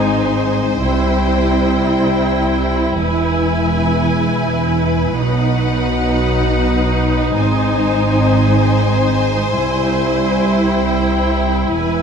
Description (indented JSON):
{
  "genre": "cinematic, emotional film score for orchestra",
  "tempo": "55 BPM (dotted quarters)",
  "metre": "6/8",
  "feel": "rubato",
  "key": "unclear",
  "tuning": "A4 = 440 Hz",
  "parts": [
    { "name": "rich studio violin section", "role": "melody", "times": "0.0-12.0 s", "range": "F#5 to Ab5", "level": "-24 LUFS", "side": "left 4 dB", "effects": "none" },
    { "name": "rich studio violin section", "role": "second line", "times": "0.0-12.0 s", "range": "B4 to C5", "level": "-22 LUFS", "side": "left 3 dB", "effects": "none" },
    { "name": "warm studio viola section", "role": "accompaniment", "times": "0.0-12.0 s", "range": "Eb4 to E4", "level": "-20 LUFS", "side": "right 1 dB", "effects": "none" },
    { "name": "dark French horn section", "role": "sustained chords", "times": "0.0-12.0 s", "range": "F#3 to E4", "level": "-20 LUFS", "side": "left 3 dB", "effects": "none" },
    { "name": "rich studio cello section", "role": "bass", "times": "0.0-12.0 s", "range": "C2 to C3", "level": "-21 LUFS", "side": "right 5 dB", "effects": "none" },
    { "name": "rich studio double bass section", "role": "bass", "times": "0.0-12.0 s", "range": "E1 to C2", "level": "-20 LUFS", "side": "right 2 dB", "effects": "none" }
  ],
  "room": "moderate concert hall reverb, RT60 2.0 s",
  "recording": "dark, warm production",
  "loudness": "-13 LUFS",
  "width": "side -6 dB against mid",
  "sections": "0.0-12.0 A section",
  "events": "none",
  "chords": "0.0 Ab; 0.8 C; 3.0 E; 5.2 B; 7.3 Ab; 9.5 C"
}